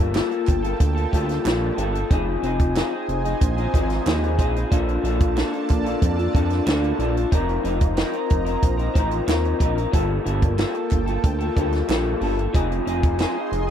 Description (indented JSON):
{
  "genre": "indie pop, bedroom pop",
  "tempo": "92 BPM",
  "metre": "4/4",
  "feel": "straight",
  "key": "unclear",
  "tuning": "A4 = 440 Hz",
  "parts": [
    { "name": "electric guitar through a small old amp", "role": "accompaniment", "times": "0.0-13.7 s", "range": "F3 to Bb4", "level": "-24 LUFS", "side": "left 3 dB", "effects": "wide subtle chorus, vibrato effect" },
    { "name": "lush unison pad", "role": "sustained chords", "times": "0.0-13.7 s", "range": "Bb3 to C6", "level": "-31 LUFS", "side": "right 5 dB", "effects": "chorus" },
    { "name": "chorused synth bass", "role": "bass", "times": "0.0-13.7 s", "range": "F1 to F2", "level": "-24 LUFS", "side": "right 1 dB", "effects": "none" },
    { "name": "group handclap", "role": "percussion", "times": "0.1-13.3 s", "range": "none", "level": "-37 LUFS", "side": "right 12 dB", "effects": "none" },
    { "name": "compact cocktail drum kit", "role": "drums", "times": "0.2-13.7 s", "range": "hi-hat, kick drum, snare drum", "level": "-21 LUFS", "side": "right 1 dB", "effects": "none" }
  ],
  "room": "little or no reverb",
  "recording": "dry, close 1970s-style studio recording",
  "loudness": "-19 LUFS",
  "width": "side -9 dB against mid",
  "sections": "0.0-13.7 A section",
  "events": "none",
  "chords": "0.0 Gm9; 2.1 Fm7; 4.7 Bbmaj7; 7.3 F7sus4; 9.9 Gm9; 12.5 Fm7"
}